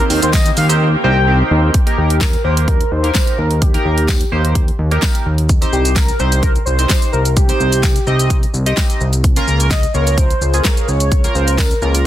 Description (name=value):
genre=dance-pop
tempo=128 BPM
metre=4/4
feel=straight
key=unclear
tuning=A4 = 440 Hz
part: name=expressive synth lead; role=melody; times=0.0-1.4 s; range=C5 to G5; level=-20 LUFS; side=left 1 dB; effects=chorus, sidechain pumping, tape echo
part: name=chorused polysynth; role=accompaniment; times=0.0-12.1 s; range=Bb3 to Eb5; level=-21 LUFS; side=right 1 dB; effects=sidechain pumping
part: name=shimmering ambient pad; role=sustained chords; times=0.0-1.7 s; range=Eb3 to G4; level=-24 LUFS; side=equal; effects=chorus, built-in reverb, sidechain pumping
part: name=fat analog bass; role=bass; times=0.0-12.1 s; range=C2 to Eb2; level=-15 LUFS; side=equal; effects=sidechain pumping
part: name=pop drum kit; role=drums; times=0.1-12.0 s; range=handclaps, hi-hat, kick drum, shaker, snare drum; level=-15 LUFS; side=equal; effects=none
part: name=tambourine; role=percussion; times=0.3-11.7 s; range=none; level=-30 LUFS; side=left 6 dB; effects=none
part: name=warm velvety synth lead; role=melody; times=2.0-12.0 s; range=G4 to Eb5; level=-21 LUFS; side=equal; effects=chorus, tape echo
room=little or no reverb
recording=dense, heavily limited modern master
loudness=-12 LUFS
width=side -12 dB against mid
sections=0.0-1.7 A section; 1.7-12.1 B section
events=drop 0.0-1.7; drums muted 0.8-1.7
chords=0.0 Eb6; 1.7 Eb; 5.5 Cm; 9.2 Bbm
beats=0.34 0.81 1.27 | 1.74 2.21 2.68 3.15 | 3.62 4.09 4.55 5.02 | 5.49 5.96 6.43 6.90 | 7.37 7.84 8.30 8.77 | 9.24 9.71 10.18 10.65 | 11.12 11.59 12.05